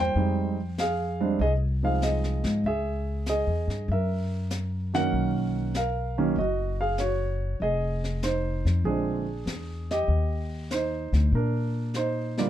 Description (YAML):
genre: jazz piano trio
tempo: 97 BPM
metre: 4/4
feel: swing 69% on 8ths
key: unclear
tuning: A4 = 441 Hz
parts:
  - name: warm grand piano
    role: melody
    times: 0.0-12.5 s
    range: D3 to G5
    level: -28 LUFS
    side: right 2 dB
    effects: none
  - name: upright bass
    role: bass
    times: 0.0-12.5 s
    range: F1 to Bb2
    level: -27 LUFS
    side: left 1 dB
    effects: none
  - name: jazz brush drum kit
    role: drums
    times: 0.2-12.5 s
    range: brushed snare drum, hi-hat, snare drum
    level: -38 LUFS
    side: left 2 dB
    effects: none
room: light reverb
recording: dark, warm production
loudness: -24 LUFS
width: side -11 dB against mid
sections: 0.0-12.5 A section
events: none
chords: 0.2 Fm7; 2.6 Dbm; 3.9 Gb7; 5.1 Bmaj9; 7.6 Fm7; 8.8 Bb7; 10.1 Ebmaj7